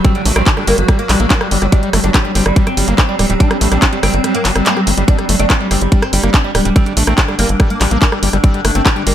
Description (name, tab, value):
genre	psychedelic trance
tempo	143 BPM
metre	4/4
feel	straight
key	G harmonic minor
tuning	A4 = 440 Hz
part	oud	melody	0.0-9.1 s	D3 to D4	-19 LUFS	equal	phaser, sidechain pumping, digital delay
part	swarming drone	sustained chords	0.0-9.1 s	F#3 to F#4	-21 LUFS	equal	built-in reverb, sidechain pumping
part	screaming distorted acid line	riff	0.0-9.1 s	F#3 to G4	-20 LUFS	moving between left 6 dB and right 5 dB	distortion, chorus, auto-pan, vintage 12-bit sampler grit, sidechain pumping, digital delay
part	electronic kick drum	drums	0.0-8.9 s	none	-12 LUFS	equal	none
part	garage drum kit	drums	0.0-9.1 s	handclaps, hi-hat, rim click	-17 LUFS	equal	none
part	tight sequencer bass	bass	0.3-9.1 s	D1 to Bb1	-16 LUFS	equal	none
room	digital ambience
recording	none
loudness	-11 LUFS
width	side -11 dB against mid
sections	0.0-9.1 A section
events	kick drops out 4.2-5.1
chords	0.0 G5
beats	| 0.04 0.47 0.88 1.30 | 1.72 2.14 2.56 2.98 | 3.40 3.82 4.24 4.66 | 5.08 5.50 5.92 6.34 | 6.76 7.18 7.60 8.02 | 8.44 8.86